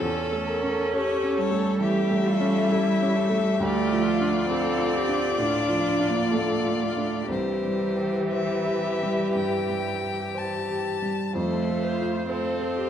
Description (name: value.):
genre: classical, slow romantic movement for piano quintet.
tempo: 58-69 BPM.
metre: 4/4.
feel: rubato.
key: unclear.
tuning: A4 = 439 Hz.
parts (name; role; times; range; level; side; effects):
rich violin; melody; 0.0-12.9 s; A4 to A5; -29 LUFS; left 5 dB; none.
dark violin; second line; 0.0-12.9 s; E4 to Bb4; -33 LUFS; left 4 dB; none.
rich cello; second line; 0.0-12.9 s; E3 to D4; -27 LUFS; right 3 dB; none.
clear baby grand piano; accompaniment; 0.0-12.9 s; C2 to C5; -28 LUFS; equal; none.
rich viola; accompaniment; 0.0-12.9 s; F4 to C5; -32 LUFS; right 1 dB; none.
room: wet scoring stage reverb, RT60 1.7 s.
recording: dark, warm production.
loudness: -22 LUFS.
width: side -9 dB against mid.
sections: 0.0-12.9 A section.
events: none.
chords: 0.0 A7/E; 3.6 Dm; 7.3 C; 11.4 F.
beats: | 0.01 0.93 1.82 2.72 | 3.62 4.51 5.39 6.32 | 7.30 8.31 9.35 10.35 | 11.36 12.30.